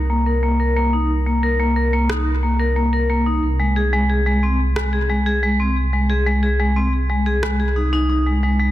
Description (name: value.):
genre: IDM.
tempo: 90 BPM.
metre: 4/4.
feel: straight.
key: unclear.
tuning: A4 = 439 Hz.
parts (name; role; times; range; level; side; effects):
dark detuned saw bass; bass; 0.0-8.7 s; C2; -19 LUFS; equal; none.
vibraphone with medium hard mallets; arpeggios; 0.1-8.7 s; Ab3 to Bb4; -19 LUFS; left 1 dB; low-pass filter, tape echo.
electronic rim click; drums; 2.1-7.6 s; none; -29 LUFS; equal; soft clipping on snare, digital delay.
room: light reverb.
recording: dense, heavily limited modern master.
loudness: -16 LUFS.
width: side -14 dB against mid.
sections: 0.0-8.7 A section.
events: filter sweep on vibraphone 0.0-8.7.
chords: 0.0 Cm7; 3.4 Ab/C.